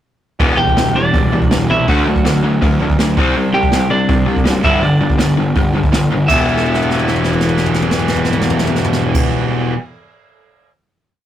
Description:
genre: punk rock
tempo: 163 BPM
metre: 4/4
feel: straight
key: E minor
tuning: A4 = 438 Hz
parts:
  - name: crunchy overdriven guitar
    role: riff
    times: 0.4-9.7 s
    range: E2 to D4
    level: -17 LUFS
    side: left 4 dB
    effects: none
  - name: tight distorted guitar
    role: riff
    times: 0.4-9.7 s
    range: G2 to E4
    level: -19 LUFS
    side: right 5 dB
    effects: distortion
  - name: fuzz picked electric bass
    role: bass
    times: 0.4-9.2 s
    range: E1 to D2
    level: -20 LUFS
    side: equal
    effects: overdrive
  - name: jazz brush drum kit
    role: drums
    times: 0.4-10.7 s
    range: crash cymbal, hi-hat, kick drum, snare drum, toms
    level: -18 LUFS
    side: equal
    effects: none
  - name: lightly driven lead guitar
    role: melody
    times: 0.6-9.2 s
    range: D4 to G5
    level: -18 LUFS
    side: right 1 dB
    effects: none
room: light reverb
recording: rough rehearsal-room recording, tube saturation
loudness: -12 LUFS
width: side -11 dB against mid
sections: 0.4-6.3 verse; 6.3-9.2 final chord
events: drum fill 6.5-9.1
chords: 0.4 Em; 1.9 D; 3.2 C5; 4.6 G5; 6.3 Em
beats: | 0.39 0.76 1.13 1.50 | 1.87 2.24 2.61 2.98 | 3.35 3.71 4.08 4.45 | 4.82 5.18 5.55 5.92 | 6.29 6.66 7.03 7.39 | 7.76 8.13 8.50 8.87

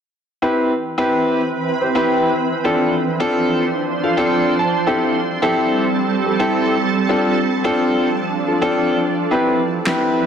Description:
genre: dance-pop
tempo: 108 BPM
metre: 4/4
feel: straight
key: C major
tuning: A4 = 436 Hz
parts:
  - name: clear concert grand piano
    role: accompaniment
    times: 0.4-10.3 s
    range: C4 to A5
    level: -17 LUFS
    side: left 1 dB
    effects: none
  - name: shimmering ambient pad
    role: sustained chords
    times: 0.9-10.3 s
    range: E3 to C5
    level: -20 LUFS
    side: right 3 dB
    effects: chorus, built-in reverb
  - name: electronic handclaps and snare drum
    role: drums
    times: 9.9-10.0 s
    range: none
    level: -22 LUFS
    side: equal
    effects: overdrive
room: moderate plate reverb, RT60 2.1 s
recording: dense, heavily limited modern master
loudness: -15 LUFS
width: side -8 dB against mid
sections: 0.4-10.3 A section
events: grand piano fill 3.8-4.9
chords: 0.4 Cmaj7; 2.6 Dm7; 4.9 Am7; 7.1 F6; 9.3 Cmaj7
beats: | 0.42 0.98 1.53 2.09 | 2.65 3.20 3.76 4.31 | 4.87 5.42 5.98 6.53 | 7.09 7.65 8.20 8.76 | 9.31 9.87

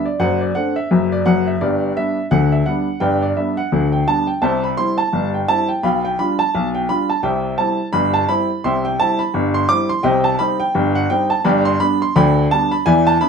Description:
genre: ragtime piano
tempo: 85 BPM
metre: 2/4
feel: swing 59% on 16ths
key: G major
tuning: A4 = 439 Hz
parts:
  - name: warm upright piano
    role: solo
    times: 0.0-13.3 s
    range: F#1 to D6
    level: -15 LUFS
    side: equal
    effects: none
room: wet studio reverb, RT60 0.5 s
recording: heard from further back in the room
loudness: -15 LUFS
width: side -6 dB against mid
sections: 0.0-13.3 A section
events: none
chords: 0.2 D7/F#; 1.6 G; 4.4 C; 5.8 G7/B; 7.2 C; 10.0 Cm; 11.5 G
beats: | 0.19 0.90 | 1.60 2.31 | 3.01 3.72 | 4.42 5.12 | 5.83 6.53 | 7.24 7.94 | 8.64 9.34 | 10.05 10.75 | 11.45 12.16 | 12.86

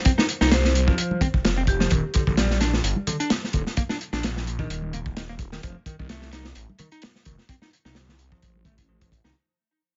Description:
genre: breakbeat, breaks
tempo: 129 BPM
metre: 4/4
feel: swing 55% on 16ths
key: F mixolydian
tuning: A4 = 440 Hz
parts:
  - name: modern bright picked electric bass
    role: riff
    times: 0.1-9.3 s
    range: D3 to Eb4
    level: -31 LUFS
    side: equal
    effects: overdrive, vintage 12-bit sampler grit
  - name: crunchy breakbeat drum kit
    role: drums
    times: 0.1-9.3 s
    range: hi-hat, kick drum, snare drum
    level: -26 LUFS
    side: equal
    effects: none
  - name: phased detuned saw bass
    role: bass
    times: 0.4-9.3 s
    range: Eb1 to C2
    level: -28 LUFS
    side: equal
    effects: phaser, tube saturation
  - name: marimba with medium hard mallets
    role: melody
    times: 0.5-1.9 s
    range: G4 to C5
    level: -35 LUFS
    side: equal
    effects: small speaker sound, tape echo
  - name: congas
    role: percussion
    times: 1.1-9.3 s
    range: none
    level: -32 LUFS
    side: equal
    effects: none
room: studio ambience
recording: nothing above 7.6 kHz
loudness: -23 LUFS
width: mono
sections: 0.0-9.4 A section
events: fade-out 0.0-9.4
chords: 0.0 F5; 1.9 Eb5; 5.6 F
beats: | 0.05 0.52 0.98 1.45 | 1.91 2.38 2.84 3.31 | 3.77 4.24 4.70 5.17 | 5.63 6.10 6.56 7.03 | 7.49 7.96 8.42 8.89

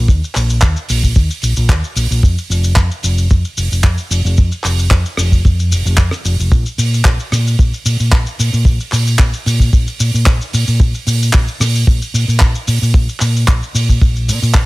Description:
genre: nu-disco, nu disco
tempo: 112 BPM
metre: 4/4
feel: swing 53% on 16ths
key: unclear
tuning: A4 = 440 Hz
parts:
  - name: fingered electric bass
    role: bass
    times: 0.0-14.7 s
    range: F1 to Bb2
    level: -14 LUFS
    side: equal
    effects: none
  - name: damped 70s drum kit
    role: drums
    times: 0.1-14.7 s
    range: handclaps, hi-hat, rim click, shaker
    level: -19 LUFS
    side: right 1 dB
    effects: studio reverb
  - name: kick drum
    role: drums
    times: 0.1-14.7 s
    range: none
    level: -10 LUFS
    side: equal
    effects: studio reverb
room: little or no reverb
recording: none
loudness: -11 LUFS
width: side -21 dB against mid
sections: 0.0-14.7 A section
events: none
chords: none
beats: | 0.09 0.62 1.16 1.69 | 2.23 2.77 3.30 3.84 | 4.37 4.91 5.44 5.98 | 6.51 7.05 7.59 8.12 | 8.66 9.19 9.73 10.27 | 10.80 11.34 11.87 12.41 | 12.94 13.48 14.02 14.55

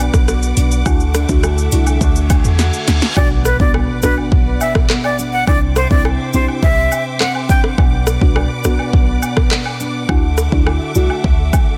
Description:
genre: dancehall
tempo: 104 BPM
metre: 4/4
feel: straight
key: B phrygian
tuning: A4 = 438 Hz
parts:
  - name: dark studio string section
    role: sustained chords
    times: 0.0-11.8 s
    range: A4 to D6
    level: -30 LUFS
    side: equal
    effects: sidechain pumping
  - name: nylon-string guitar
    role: arpeggios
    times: 0.0-11.8 s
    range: B2 to G4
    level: -25 LUFS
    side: equal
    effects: none
  - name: warm 808-style bass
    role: bass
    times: 0.0-11.5 s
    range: B1 to E2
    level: -18 LUFS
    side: equal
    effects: none
  - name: deep house drum kit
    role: drums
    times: 0.1-11.7 s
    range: handclaps, hi-hat, kick drum, rim click, shaker, snare drum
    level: -17 LUFS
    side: equal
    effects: overdrive
  - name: cabasa and woodblock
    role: percussion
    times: 0.6-11.7 s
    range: none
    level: -29 LUFS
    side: equal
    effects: none
  - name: deep mellow chord stab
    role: accompaniment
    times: 0.9-11.2 s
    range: B3 to F#4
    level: -24 LUFS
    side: equal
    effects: chorus, sidechain pumping
  - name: reverse cymbal and impact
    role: sound effects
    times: 2.3-5.5 s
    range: none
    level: -28 LUFS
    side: equal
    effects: none
  - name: breathy bright jazz flute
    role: melody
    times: 3.2-7.6 s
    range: B4 to G5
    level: -22 LUFS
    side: equal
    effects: delay
room: little or no reverb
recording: dense, heavily limited modern master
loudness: -15 LUFS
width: mono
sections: 0.0-3.2 A section; 3.2-11.8 B section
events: reverse cymbal 2.3-3.2; drum fill 2.6-3.2; hi-hats muted 3.2-11.8; impact 3.2-5.5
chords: 0.0 Bm; 0.9 Dadd9; 3.2 Bm; 5.5 Cadd9; 7.8 Bm; 10.1 Dadd9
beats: 0.28 | 0.86 1.44 2.01 2.59 | 3.17 3.74 4.32 4.90 | 5.47 6.05 6.63 7.21 | 7.78 8.36 8.94 9.51 | 10.09 10.67 11.24

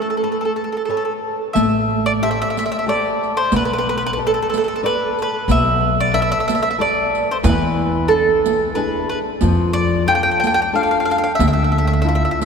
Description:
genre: italian folk, Italian serenade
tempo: 91 BPM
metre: 3/4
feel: swing 55% on 8ths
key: A minor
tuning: A4 = 438 Hz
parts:
  - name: mandolin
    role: melody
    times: 0.0-12.4 s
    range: A4 to G5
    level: -18 LUFS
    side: right 1 dB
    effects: none
  - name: flamenco guitar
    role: accompaniment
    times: 0.0-12.4 s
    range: D3 to D5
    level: -22 LUFS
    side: left 2 dB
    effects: none
  - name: upright bass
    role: bass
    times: 1.6-12.2 s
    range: A1 to F2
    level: -21 LUFS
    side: left 1 dB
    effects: none
  - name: riq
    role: percussion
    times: 1.6-12.4 s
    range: none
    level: -26 LUFS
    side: right 4 dB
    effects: none
room: wet cathedral reverb, RT60 5.5 s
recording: recorded in a church or concert hall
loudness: -15 LUFS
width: side -6 dB against mid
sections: 0.0-1.6 A section; 1.6-12.4 B section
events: break 0.0-1.6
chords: 0.0 Aadd9; 1.6 Am7; 3.5 Bm7; 7.4 E7; 9.4 F6; 11.4 Dmadd9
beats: 0.23 0.89 | 1.56 2.22 2.88 | 3.53 4.18 4.83 | 5.48 6.13 6.79 | 7.44 8.10 8.76 | 9.42 10.08 10.74 | 11.40 12.05

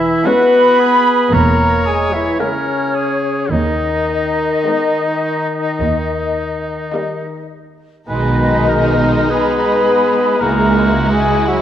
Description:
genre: classical, slow romantic movement for symphony orchestra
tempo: 48-56 BPM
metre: 4/4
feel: rubato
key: G# minor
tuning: A4 = 440 Hz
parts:
  - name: clear clarinet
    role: second line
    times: 0.0-11.6 s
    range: C#4 to B4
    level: -22 LUFS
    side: equal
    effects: none
  - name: clear oboe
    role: second line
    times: 0.0-11.6 s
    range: D#4 to C#5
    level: -23 LUFS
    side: right 1 dB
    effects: none
  - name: large flute ensemble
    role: second line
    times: 0.0-11.6 s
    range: C#5 to B5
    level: -19 LUFS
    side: left 1 dB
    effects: none
  - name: dark French horn section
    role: sustained chords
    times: 0.0-11.6 s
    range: C#3 to B3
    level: -18 LUFS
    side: left 2 dB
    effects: none
  - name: warm studio cello section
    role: bass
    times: 0.0-11.3 s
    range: C#2 to B2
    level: -21 LUFS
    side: right 3 dB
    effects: none
  - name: warm studio double bass section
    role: bass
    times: 0.0-11.3 s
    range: E1 to D#2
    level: -20 LUFS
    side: right 2 dB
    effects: none
  - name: dark studio violin section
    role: melody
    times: 0.3-11.6 s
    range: A#3 to E4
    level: -24 LUFS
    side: left 3 dB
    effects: none
  - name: warm studio violin section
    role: second line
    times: 0.3-11.6 s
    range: G#3 to B3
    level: -26 LUFS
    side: left 1 dB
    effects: none
  - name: warm studio viola section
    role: accompaniment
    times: 0.3-11.6 s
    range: G3 to G#3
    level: -23 LUFS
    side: right 4 dB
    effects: none
room: wet scoring stage reverb, RT60 1.9 s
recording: worn, warbling old tape, cassette tape, warbly pitch drift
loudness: -12 LUFS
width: side -10 dB against mid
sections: 0.0-11.6 A section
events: none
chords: 0.0 C#m/E; 1.3 A#m7b5/E; 3.5 G#m/D#; 5.8 D#; 8.1 G#m/B; 10.4 C#m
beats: 0.26 1.33 2.40 | 3.50 4.66 5.80 6.93 | 8.09 9.30 10.40 11.48

